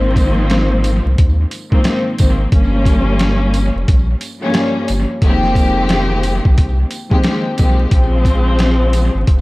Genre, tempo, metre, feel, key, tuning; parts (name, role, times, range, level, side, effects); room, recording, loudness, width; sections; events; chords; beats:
hip hop, boom-bap hip-hop; 89 BPM; 4/4; swing 62% on 16ths; Bb dorian; A4 = 440 Hz
warm studio string section; accompaniment; 0.0-9.4 s; F2 to G4; -17 LUFS; left 1 dB; high-pass filter, low-pass filter
saturated sub bass; bass; 0.0-9.4 s; F1 to Eb2; -16 LUFS; equal
boom bap sampler-style drum kit; drums; 0.2-9.4 s; hi-hat, kick drum, snare drum; -15 LUFS; equal; analog delay
tambourine; percussion; 0.2-9.1 s; -36 LUFS; right 6 dB; analog delay
light reverb, studio ambience; echo-heavy mix, vinyl crackle; -12 LUFS; side -21 dB against mid
0.0-9.4 A section
0.0 Ab6; 2.5 Bbm6; 5.2 Fm11; 7.9 Bbm9
0.50 1.18 1.85 | 2.52 3.20 3.87 4.55 | 5.22 5.90 6.57 7.25 | 7.92 8.59 9.27